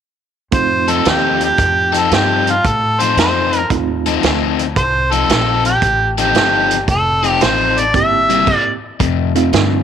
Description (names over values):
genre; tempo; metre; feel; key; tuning
electric blues shuffle; 113 BPM; 4/4; swing 67% on 8ths; F mixolydian; A4 = 440 Hz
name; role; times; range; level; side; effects
mellow harmonica; melody; 0.5-8.8 s; F4 to E5; -15 LUFS; right 1 dB; overdrive
barky reed electric piano; accompaniment; 0.5-4.5, 7.9-9.8 s; A3 to G4; -20 LUFS; right 13 dB; overdrive, fast tremolo
upright bass; bass; 0.5-9.8 s; F1 to A2; -21 LUFS; equal; none
vintage drum kit; drums; 0.5-9.7 s; crash cymbal, hi-hat, kick drum, snare drum; -19 LUFS; right 5 dB; none
crunchy overdriven guitar; riff; 0.9-9.8 s; F2 to A4; -19 LUFS; left 13 dB; none
room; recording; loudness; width
light reverb, small room ambience; 1960s-style stereo with parts hard left and right; -12 LUFS; side -8 dB against mid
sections
0.5-9.0 A section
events
stop 8.5-9.0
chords
0.5 F7; 7.9 C7; 9.0 F7